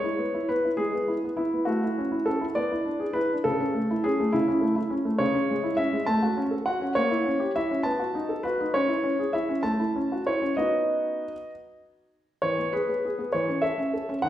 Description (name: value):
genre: classical-period piano sonatina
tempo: 67 BPM (dotted quarters)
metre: 6/8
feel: straight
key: A major, E major from 5.2 s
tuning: A4 = 439 Hz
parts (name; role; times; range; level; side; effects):
- clear grand piano; solo; 0.0-14.3 s; C#3 to A5; -24 LUFS; equal; none
room: wet recital hall reverb, RT60 1.4 s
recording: heard from further back in the room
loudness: -24 LUFS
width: side -12 dB against mid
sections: 0.0-12.4 A section; 12.4-14.3 B section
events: none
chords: 0.0 E; 1.7 A; 2.6 E7/B; 3.5 A/C#; 5.2 C#m; 6.1 F#m/A; 7.0 A#dim7; 7.8 B7; 8.7 C#m; 9.6 F#m7/A; 10.6 B; 12.4 E; 13.3 A/E